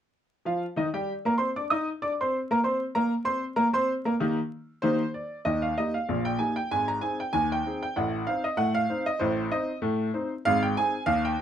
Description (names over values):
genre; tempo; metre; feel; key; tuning
ragtime piano; 96 BPM; 2/4; swing 56% on 16ths; Eb major; A4 = 440 Hz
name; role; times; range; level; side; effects
clear upright piano; solo; 0.5-11.4 s; Ab1 to Eb6; -25 LUFS; equal; none
room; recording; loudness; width
moderate small room reverb, RT60 0.6 s; vinyl crackle; -25 LUFS; side -9 dB against mid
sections
0.5-5.5 A section; 5.5-11.4 B section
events
none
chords
0.5 Eb; 6.7 Ab; 8.0 Adim; 10.4 Ab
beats
| 0.45 1.08 | 1.70 2.33 | 2.95 3.57 | 4.20 4.82 | 5.45 6.08 | 6.70 7.33 | 7.95 8.58 | 9.20 9.82 | 10.45 11.07